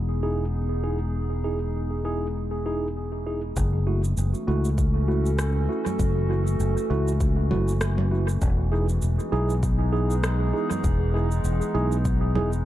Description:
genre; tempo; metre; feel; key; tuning
ambient dub; 99 BPM; 4/4; swing 57% on 16ths; F# dorian; A4 = 440 Hz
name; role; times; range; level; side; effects
warbly tape-like pad; sustained chords; 0.0-12.7 s; E3 to A4; -31 LUFS; equal; chorus, built-in reverb
fingered electric bass; bass; 0.0-12.7 s; E1 to C#2; -24 LUFS; left 1 dB; none
mellow tine electric piano; stabs; 0.2-12.5 s; A3 to G#4; -30 LUFS; right 2 dB; medium stereo tremolo, dub echo
electronic kick drum; drums; 3.6-12.2 s; none; -26 LUFS; equal; overdrive, small room ambience
electronic shaker, rim click and congas; drums; 3.6-12.6 s; none; -33 LUFS; right 2 dB; low-pass filter on perc, small room ambience, low-pass filter on snare, dub echo
room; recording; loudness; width
light reverb; echo-heavy mix; -22 LUFS; side -13 dB against mid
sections
0.0-3.6 A section; 3.6-12.7 B section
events
none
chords
0.0 Emaj7; 3.6 F#m7; 8.4 Emaj7

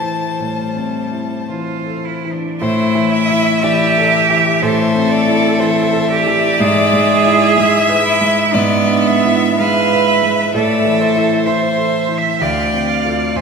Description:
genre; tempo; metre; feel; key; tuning
classical, slow romantic movement for piano quartet; 52-65 BPM; 4/4; rubato; A minor; A4 = 442 Hz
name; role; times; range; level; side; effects
clear violin; melody; 0.0-13.4 s; C5 to A5; -20 LUFS; left 3 dB; none
clear violin; second line; 0.0-13.4 s; C5 to G#5; -20 LUFS; left 2 dB; none
rich cello; second line; 0.0-13.4 s; E3 to E5; -17 LUFS; right 7 dB; none
warm concert grand piano; accompaniment; 0.0-13.4 s; D2 to B4; -17 LUFS; left 1 dB; none
room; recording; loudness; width
wet concert hall reverb, RT60 2.1 s; minimal, uncompressed stereo recording; -12 LUFS; side -5 dB against mid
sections
0.0-2.6 A section; 2.6-13.4 A section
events
none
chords
0.0 Am; 6.6 E7/G#; 10.5 Am; 12.4 Dm7

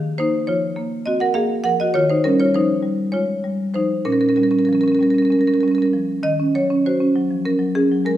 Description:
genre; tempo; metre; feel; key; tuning
classical, contemporary piece for solo marimba; 191-204 BPM (eighths); 7/8; straight; Bb dorian; A4 = 438 Hz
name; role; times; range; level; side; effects
marimba with medium hard mallets; solo; 0.0-8.2 s; Bb2 to Gb5; -16 LUFS; equal; none
room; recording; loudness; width
wet recital hall reverb, RT60 1.5 s; minimal, uncompressed stereo recording; -16 LUFS; side -12 dB against mid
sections
0.0-6.2 A section; 6.2-8.2 B section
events
none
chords
0.0 Gbmaj9/Eb; 1.9 Eb9; 4.1 Bbm6; 6.2 Ebm7

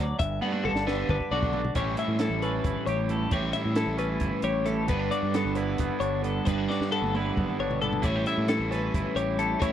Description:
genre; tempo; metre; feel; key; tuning
math rock and midwest emo; 267 BPM (eighths); 7/8; straight; unclear; A4 = 440 Hz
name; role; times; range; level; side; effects
twangy electric guitar; accompaniment; 0.0-9.7 s; G2 to B4; -32 LUFS; right 6 dB; wide subtle chorus
twelve-string electric guitar; arpeggios; 0.0-9.7 s; A4 to F#5; -30 LUFS; left 6 dB; none
overdriven electric guitar; riff; 0.0-9.7 s; G2 to E4; -32 LUFS; right 1 dB; none
growling fingered electric bass; bass; 0.0-9.7 s; F#1 to A2; -31 LUFS; equal; overdrive
compact cocktail drum kit; drums; 0.2-9.7 s; hi-hat, kick drum, snare drum, toms; -31 LUFS; equal; none
room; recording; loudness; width
little or no reverb; dry, close 1970s-style studio recording; -25 LUFS; side -10 dB against mid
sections
0.0-1.8 A section; 1.8-9.7 B section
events
drum fill 0.4-1.8, 6.7-8.0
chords
0.2 Gmaj9; 1.8 A9; 4.9 Gmaj9; 8.0 A9

